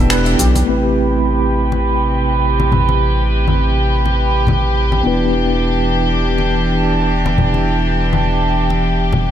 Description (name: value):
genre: sunset chillout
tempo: 103 BPM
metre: 4/4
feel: swing 55% on 16ths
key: A minor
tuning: A4 = 440 Hz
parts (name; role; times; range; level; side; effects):
- mellow tine electric piano; accompaniment; 0.0-9.3 s; A3 to D5; -20 LUFS; moving between left 4 dB and right 5 dB; medium stereo tremolo, auto-pan, ping-pong delay
- clear studio string section; sustained chords; 0.0-9.3 s; C3 to B4; -17 LUFS; right 1 dB; low-pass filter
- round analog bass; bass; 0.0-9.3 s; E1 to B1; -18 LUFS; equal; tube saturation
- steel pan; arpeggios; 0.1-0.5 s; G4 to B4; -26 LUFS; left 1 dB; ping-pong delay
- deep house drum kit; drums; 0.1-0.7 s; cabasa, finger snaps, hi-hat; -20 LUFS; equal; none
- electronic kick drum; drums; 0.4-0.5 s; none; -19 LUFS; equal; none
- congas; percussion; 0.6-9.3 s; none; -19 LUFS; left 3 dB; none
room: light reverb, digital ambience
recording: none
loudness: -13 LUFS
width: side -10 dB against mid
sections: 0.7-9.3 A section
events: band accent 0.1; filter sweep on string section 0.7-9.3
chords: 0.0 Em7; 0.7 Am9; 5.1 Em7